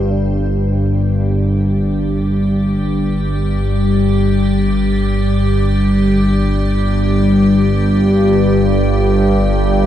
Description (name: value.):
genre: dark ambient drone.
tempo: free time.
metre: none.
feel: none.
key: unclear.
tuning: A4 = 440 Hz.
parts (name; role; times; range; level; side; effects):
analog drone; drone; 0.0-9.9 s; G1 to G2; -13 LUFS; equal; chorus.
icy glass pad; texture; 0.1-9.9 s; G3 to C5; -20 LUFS; right 1 dB; chorus, built-in reverb.
room: moderate huge ambient reverb, RT60 8.4 s.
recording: dark, warm production.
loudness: -12 LUFS.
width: side -11 dB against mid.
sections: 0.1-9.9 A section.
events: none.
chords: none.